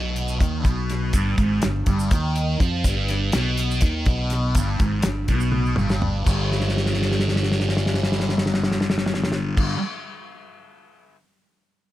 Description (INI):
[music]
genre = psychedelic rock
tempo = 245 BPM (eighths)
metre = 7/8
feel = straight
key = G phrygian dominant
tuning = A4 = 440 Hz
[part]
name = thick fuzz guitar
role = riff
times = 0.0-9.8 s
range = G2 to G3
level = -24 LUFS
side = equal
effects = distortion, phaser
[part]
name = fingered electric bass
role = bass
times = 0.0-9.6 s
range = G1 to F2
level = -24 LUFS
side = equal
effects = none
[part]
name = damped 70s drum kit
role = drums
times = 0.2-11.2 s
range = crash cymbal, hi-hat, kick drum, snare drum, toms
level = -23 LUFS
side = equal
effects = none
[part]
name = tube shaker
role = percussion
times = 0.3-9.6 s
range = none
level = -39 LUFS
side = right 4 dB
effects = none
[sound]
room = studio reverb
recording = none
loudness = -19 LUFS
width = side -14 dB against mid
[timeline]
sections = 0.0-6.3 A section; 6.3-9.7 B section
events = drum fill 5.5-6.3, 6.5-9.6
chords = 0.0 G; 6.3 G5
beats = 0.16 0.40 0.65 0.89 | 1.14 1.38 1.63 1.87 2.11 2.36 2.60 | 2.85 3.09 3.34 3.58 3.83 4.07 4.32 | 4.56 4.80 5.05 5.29 5.54 5.78 6.03 | 6.27 6.52 6.76 7.01 7.25 7.50 7.74 | 7.99 8.23 8.48 8.72 8.97 9.21 9.46